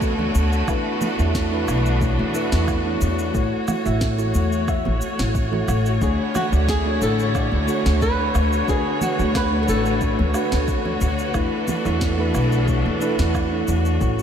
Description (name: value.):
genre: sunset chillout.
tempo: 90 BPM.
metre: 4/4.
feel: straight.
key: unclear.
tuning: A4 = 440 Hz.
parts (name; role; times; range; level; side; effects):
soft electric-piano-like synth keys; accompaniment; 0.0-14.2 s; A3 to E5; -24 LUFS; moving between left 5 dB and right 4 dB; chorus, auto-pan, low-pass filter, diffuse ambient delay.
clear studio string section; sustained chords; 0.0-14.2 s; D3 to C#5; -26 LUFS; equal; none.
upright bass; bass; 0.0-14.2 s; A1 to E2; -22 LUFS; equal; tube saturation.
electronic kick drum; drums; 0.0-14.2 s; none; -25 LUFS; equal; studio reverb.
electronic shaker, woodblock and snare drum; drums; 0.0-14.2 s; none; -32 LUFS; equal; studio reverb.
congas; percussion; 0.2-13.0 s; none; -32 LUFS; equal; none.
flamenco guitar; melody; 6.0-10.3 s; F#4 to B4; -28 LUFS; equal; tape echo.
room: moderate cathedral reverb, RT60 5.6 s.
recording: dreamy mix soaked in reverb.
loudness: -18 LUFS.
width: side -8 dB against mid.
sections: 0.0-14.2 A section.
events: none.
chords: 0.0 Bm7; 0.7 E7sus4; 3.3 A6; 6.0 Dmaj7; 8.3 Bm7; 11.3 E7sus4.